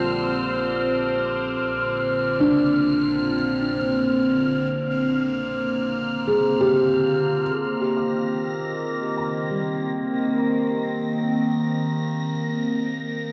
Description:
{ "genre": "ambient", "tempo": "free time", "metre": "none", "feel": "none", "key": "unclear", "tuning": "A4 = 440 Hz", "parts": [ { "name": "evolving wavetable pad", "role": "sustained chords", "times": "0.0-13.3 s", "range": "D3 to C5", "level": "-25 LUFS", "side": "equal", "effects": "phaser, built-in reverb" }, { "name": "felt-muted upright piano", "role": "arpeggios", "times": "0.0-13.3 s", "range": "G3 to D6", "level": "-27 LUFS", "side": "equal", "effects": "analog delay" }, { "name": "clear chamber double bass section", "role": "bass", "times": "0.0-7.5 s", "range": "Bb1", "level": "-43 LUFS", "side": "equal", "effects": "none" }, { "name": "wind-like tuned noise texture", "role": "texture", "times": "0.0-13.3 s", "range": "F6 to Bb6", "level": "-34 LUFS", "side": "equal", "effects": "built-in reverb" } ], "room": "wet studio reverb, RT60 0.6 s", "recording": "home recording on cassette", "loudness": "-23 LUFS", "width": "mono", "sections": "0.0-7.6 A section; 7.6-13.3 B section", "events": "fade-out on double bass section 0.0-7.6", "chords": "0.0 Bbadd9; 7.6 Eb6" }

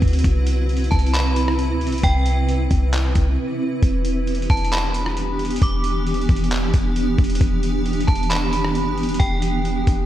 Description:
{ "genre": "hip hop, atmospheric cloud-rap", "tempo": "134 BPM", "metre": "4/4", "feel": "half-time", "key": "E minor", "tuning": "A4 = 439 Hz", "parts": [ { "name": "granular cloud pad", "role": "sustained chords", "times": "0.0-10.1 s", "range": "C3 to B4", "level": "-23 LUFS", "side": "right 1 dB", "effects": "built-in reverb, sidechain pumping" }, { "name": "clean 808-style bass", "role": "bass", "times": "0.0-10.1 s", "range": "E1 to D2", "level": "-21 LUFS", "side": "equal", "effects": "none" }, { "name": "lo-fi sampler-style drum kit", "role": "drums", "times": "0.0-10.0 s", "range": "handclaps, hi-hat, kick drum, rim click", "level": "-23 LUFS", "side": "equal", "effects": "none" }, { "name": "metallic FM bell", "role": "melody", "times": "0.9-9.6 s", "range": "G5 to D6", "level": "-26 LUFS", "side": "right 1 dB", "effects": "chorus, low-pass filter, tape echo" } ], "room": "moderate lush hall reverb, RT60 2.0 s", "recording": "dreamy mix soaked in reverb", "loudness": "-17 LUFS", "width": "side -12 dB against mid", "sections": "0.0-3.8 A section; 3.8-10.1 A section", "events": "break 3.4-3.8", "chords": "0.2 Cmaj7; 3.8 Em7" }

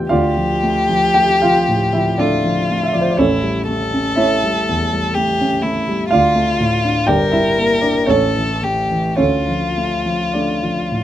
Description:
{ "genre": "classical, romantic duo for violin and grand piano", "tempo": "52-63 BPM", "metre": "3/4", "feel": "rubato", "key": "D minor", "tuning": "A4 = 440 Hz", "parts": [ { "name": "dark grand piano", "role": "accompaniment", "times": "0.0-11.0 s", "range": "G1 to G5", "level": "-16 LUFS", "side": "right 1 dB", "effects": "none" }, { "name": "rich violin", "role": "melody", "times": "0.1-11.0 s", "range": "E4 to Bb4", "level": "-18 LUFS", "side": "left 2 dB", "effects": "none" } ], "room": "little or no reverb", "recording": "close, detailed microphones", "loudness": "-14 LUFS", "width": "side -12 dB against mid", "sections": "0.0-11.0 A section", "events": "none", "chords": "0.1 Dm; 3.2 A7; 6.1 Dm; 7.1 Gm; 8.1 A; 9.2 Dm" }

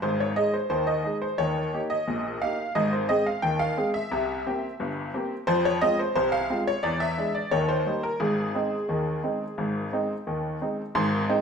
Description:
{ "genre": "ragtime piano", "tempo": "88 BPM", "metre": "2/4", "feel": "straight", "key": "Ab major", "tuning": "A4 = 439 Hz", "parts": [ { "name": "honky-tonk upright piano", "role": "solo", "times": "0.0-11.4 s", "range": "G1 to C6", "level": "-24 LUFS", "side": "equal", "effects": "none" } ], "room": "wet stone room reverb, RT60 1.3 s", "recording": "band playing live in one room", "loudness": "-24 LUFS", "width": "side -6 dB against mid", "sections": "0.0-11.0 A section", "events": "none", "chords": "0.0 Ab5; 1.4 Eb; 2.8 Ab; 4.1 C7; 5.5 Fm; 6.8 E7; 7.5 Eb; 8.2 Ab" }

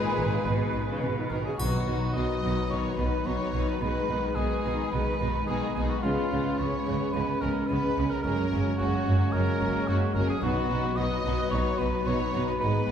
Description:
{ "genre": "cinematic, heroic adventure film score", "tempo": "108 BPM", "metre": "4/4", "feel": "straight", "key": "B major", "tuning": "A4 = 441 Hz", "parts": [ { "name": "rich studio violin section", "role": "melody", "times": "0.0-12.9 s", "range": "G#3 to D#5", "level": "-38 LUFS", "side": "left 5 dB", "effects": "none" }, { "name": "flute section", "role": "second line", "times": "0.0-1.0 s", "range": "G#4", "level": "-38 LUFS", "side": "left 5 dB", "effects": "none" }, { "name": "mellow cor anglais", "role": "second line", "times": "0.0-12.9 s", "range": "E#4 to D#5", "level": "-33 LUFS", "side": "right 1 dB", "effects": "none" }, { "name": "rich symphonic violin section", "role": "second line", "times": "0.0-12.9 s", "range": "A#3 to G#4", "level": "-36 LUFS", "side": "left 2 dB", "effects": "none" }, { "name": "warm symphonic viola section", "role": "accompaniment", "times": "0.0-12.9 s", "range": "C#3 to B4", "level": "-34 LUFS", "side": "equal", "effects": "none" }, { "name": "dark French horn section", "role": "sustained chords", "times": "0.0-12.9 s", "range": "F#3 to D#4", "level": "-33 LUFS", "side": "left 2 dB", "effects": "none" }, { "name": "mellow trumpet", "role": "stabs", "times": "0.0-12.9 s", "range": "B4 to C#5", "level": "-35 LUFS", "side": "left 1 dB", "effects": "none" }, { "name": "rich symphonic cello section", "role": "bass", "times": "0.0-12.7 s", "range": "F#2 to C#3", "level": "-33 LUFS", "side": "right 2 dB", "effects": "none" }, { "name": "timpani", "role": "percussion", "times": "0.0-2.4, 10.4-11.2 s", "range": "G#2 to B2", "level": "-35 LUFS", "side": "equal", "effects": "none" }, { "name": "dark symphonic double bass section", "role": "bass", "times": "0.2-12.7 s", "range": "F#1 to C#2", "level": "-32 LUFS", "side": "right 2 dB", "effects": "none" }, { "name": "triangle", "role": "percussion", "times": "1.6-2.7 s", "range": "none", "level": "-43 LUFS", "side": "left 2 dB", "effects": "none" } ], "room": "wet recital hall reverb, RT60 1.6 s", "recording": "recorded in a church or concert hall", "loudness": "-25 LUFS", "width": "side -8 dB against mid", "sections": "0.0-1.6 A section; 1.6-12.9 B section", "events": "none", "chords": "0.0 G#m; 1.6 B; 3.8 G#m/B; 6.0 C#7; 8.2 F#add9; 10.4 B" }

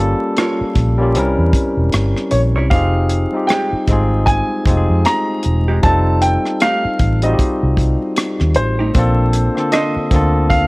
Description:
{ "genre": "R&B, neo-soul", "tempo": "77 BPM", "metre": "4/4", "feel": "swing 57% on 16ths", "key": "unclear", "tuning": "A4 = 441 Hz", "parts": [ { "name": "barky tine electric piano", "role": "accompaniment", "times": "0.0-10.7 s", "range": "D3 to Bb4", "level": "-18 LUFS", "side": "left 1 dB", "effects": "none" }, { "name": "vintage muted fingered electric bass", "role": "bass", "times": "0.0-10.6 s", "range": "E1 to F2", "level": "-16 LUFS", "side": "equal", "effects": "none" }, { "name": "vintage hollow-body jazz guitar", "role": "second line", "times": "0.4-9.9 s", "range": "Ab3 to Db5", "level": "-24 LUFS", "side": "right 2 dB", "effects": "none" }, { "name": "tight funk drum kit", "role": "drums", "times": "0.4-10.7 s", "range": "hi-hat, kick drum, rim click", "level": "-18 LUFS", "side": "equal", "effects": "none" }, { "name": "warm baby grand piano", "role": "melody", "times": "2.3-10.7 s", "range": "C5 to Bb5", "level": "-20 LUFS", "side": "equal", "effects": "none" } ], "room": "light reverb", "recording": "worn, warbling old tape, cassette tape, vinyl crackle, warbly pitch drift", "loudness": "-13 LUFS", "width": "side -24 dB against mid", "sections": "0.0-10.7 A section", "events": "none", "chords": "0.0 Gm7b5; 1.2 C7b9; 2.7 Fm9; 5.8 F9; 8.9 Bbmaj9" }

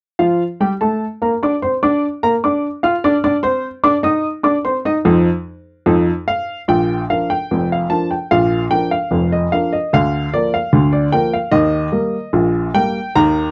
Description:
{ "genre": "ragtime piano", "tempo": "74 BPM", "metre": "2/4", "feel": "straight", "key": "Bb major", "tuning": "A4 = 437 Hz", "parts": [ { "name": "warm upright piano", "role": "solo", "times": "0.2-13.5 s", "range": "F1 to F6", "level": "-17 LUFS", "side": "equal", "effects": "none" } ], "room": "little or no reverb", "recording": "dry, close 1970s-style studio recording", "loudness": "-17 LUFS", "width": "mono", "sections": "0.2-6.7 A section; 6.7-13.5 B section", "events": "none", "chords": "0.2 Bb; 3.4 F7; 6.7 Bb; 9.9 Bb/D; 11.5 Eb" }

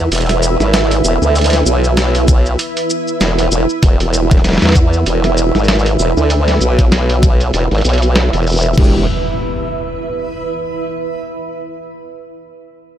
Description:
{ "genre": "glitch hop", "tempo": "97 BPM", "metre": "4/4", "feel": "swing 57% on 16ths", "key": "unclear", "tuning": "A4 = 440 Hz", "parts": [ { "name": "formant-sweep wobble bass", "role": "bass", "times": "0.0-9.1 s", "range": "E1 to E2", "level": "-13 LUFS", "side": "equal", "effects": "chorus" }, { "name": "granular cloud pad", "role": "texture", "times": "0.0-11.2 s", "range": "E4 to E5", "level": "-19 LUFS", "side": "right 3 dB", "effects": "built-in reverb, sidechain pumping" }, { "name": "boom bap sampler-style drum kit", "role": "drums", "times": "0.1-8.9 s", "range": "crash cymbal, hi-hat, shaker, snare drum", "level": "-18 LUFS", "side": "equal", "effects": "low-pass filter on hats, studio reverb, low-pass filter on snare, low-pass filter on perc, low-pass filter on cymbals" }, { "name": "electronic kick drum", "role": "drums", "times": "2.3-8.9 s", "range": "none", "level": "-11 LUFS", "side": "equal", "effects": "overdrive, studio reverb" }, { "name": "mellow tine electric piano", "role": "stabs", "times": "8.8-9.0 s", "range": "G#3 to G4", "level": "-22 LUFS", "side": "right 1 dB", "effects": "sidechain pumping, dub echo" }, { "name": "impact", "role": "sound effects", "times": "8.8-11.2 s", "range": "none", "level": "-21 LUFS", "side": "equal", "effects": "none" } ], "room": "light reverb", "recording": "none", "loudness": "-11 LUFS", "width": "side -10 dB against mid", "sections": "0.0-8.8 A section; 8.8-11.2 B section", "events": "none", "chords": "0.0 E5" }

